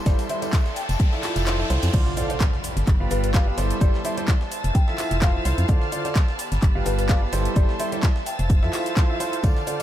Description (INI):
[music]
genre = piano house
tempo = 128 BPM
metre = 4/4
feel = swing 55% on 16ths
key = unclear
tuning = A4 = 438 Hz
[part]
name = rich studio violin section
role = sustained chords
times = 0.0-9.8 s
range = G4 to A6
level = -36 LUFS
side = left 2 dB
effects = sidechain pumping
[part]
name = riser and impact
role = sound effects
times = 0.0-3.8 s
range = none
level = -32 LUFS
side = equal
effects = none
[part]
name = warm studio string section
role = texture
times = 0.0-9.8 s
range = B3 to E6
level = -33 LUFS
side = right 1 dB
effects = sidechain pumping
[part]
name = folk marimba with medium mallets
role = melody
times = 0.1-8.9 s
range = B4 to G5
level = -33 LUFS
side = left 3 dB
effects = analog delay
[part]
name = clear grand piano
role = riff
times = 0.1-9.8 s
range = D3 to F5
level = -28 LUFS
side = right 2 dB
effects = sidechain pumping, low-pass filter, analog delay
[part]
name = organ-like FM bass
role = bass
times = 0.1-9.5 s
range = F1 to F2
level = -24 LUFS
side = equal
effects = sidechain pumping
[part]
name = breakbeat sampler-style drum kit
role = drums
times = 0.1-9.8 s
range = hi-hat, shaker, snare drum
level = -42 LUFS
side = right 1 dB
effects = none
[part]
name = electronic kick drum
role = drums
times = 0.1-9.5 s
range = none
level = -19 LUFS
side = equal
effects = overdrive
[part]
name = house drum kit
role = drums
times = 0.1-9.8 s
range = crash cymbal, handclaps, hi-hat, shaker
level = -32 LUFS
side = left 1 dB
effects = overdrive
[part]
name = tambourine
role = percussion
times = 0.1-1.9, 9.4-9.8 s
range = none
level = -46 LUFS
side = left 4 dB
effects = none
[sound]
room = light reverb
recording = none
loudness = -19 LUFS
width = side -12 dB against mid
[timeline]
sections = 0.0-1.9 A section; 1.9-9.8 B section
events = riser 0.0-1.9; kick drops out 1.5-1.9; drop 1.9-9.8; impact 1.9-3.8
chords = 0.0 C6/G; 0.8 Fmaj7; 1.9 Dm7; 2.6 G7; 3.6 C6/G; 4.5 Fmaj7; 5.7 Dm7; 6.4 G7; 7.3 C6/G; 8.3 Fmaj7